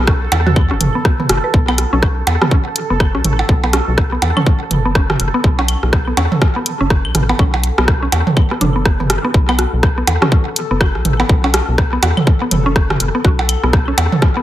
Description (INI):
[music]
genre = minimal techno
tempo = 123 BPM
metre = 4/4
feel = swing 60% on 16ths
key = unclear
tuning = A4 = 440 Hz
[part]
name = rubbery square bass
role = bass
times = 0.0-14.1 s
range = F#1 to E2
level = -18 LUFS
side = equal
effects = sidechain pumping
[part]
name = bubbling stepped-filter texture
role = texture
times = 0.0-14.4 s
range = A4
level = -26 LUFS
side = right 1 dB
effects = chorus, built-in reverb, sidechain pumping
[part]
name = mallet-like synth pluck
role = riff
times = 0.1-14.4 s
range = B3 to B4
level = -22 LUFS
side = left 1 dB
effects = chorus, sidechain pumping, tape echo
[part]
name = electronic kick drum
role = drums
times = 0.1-14.3 s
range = none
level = -13 LUFS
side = equal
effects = none
[part]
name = punchy analog drum machine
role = drums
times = 0.1-14.1 s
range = hi-hat, rim click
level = -20 LUFS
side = equal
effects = tape echo
[part]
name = minimal click drum kit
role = percussion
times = 0.3-14.3 s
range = claves, percussion blips, rim click, toms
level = -18 LUFS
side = right 2 dB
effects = overdrive, tape echo
[sound]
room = light reverb, digital ambience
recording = echo-heavy mix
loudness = -12 LUFS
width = side -13 dB against mid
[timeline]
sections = 0.0-14.4 A section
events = filter sweep on synth arpeggio sound 0.0-14.4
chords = 0.0 B7(no3)